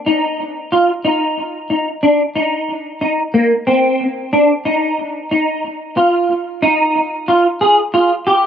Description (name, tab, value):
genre	progressive instrumental, progressive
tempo	183 BPM (eighths)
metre	11/8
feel	straight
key	unclear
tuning	A4 = 439 Hz
part	semi-hollow electric guitar	solo	0.1-8.4 s	Bb3 to Ab4	-13 LUFS	equal	ensemble chorus, analog delay
room	moderate spring reverb, RT60 1.2 s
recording	echo-heavy mix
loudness	-13 LUFS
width	side -8 dB against mid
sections	0.0-3.7 A section; 3.7-8.5 B section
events	none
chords	none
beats	| 0.06 0.39 0.72 1.05 1.38 1.70 2.03 2.36 2.69 3.02 3.34 | 3.67 4.00 4.33 4.66 4.98 5.31 5.64 5.97 6.29 6.62 6.95 | 7.28 7.60 7.93 8.26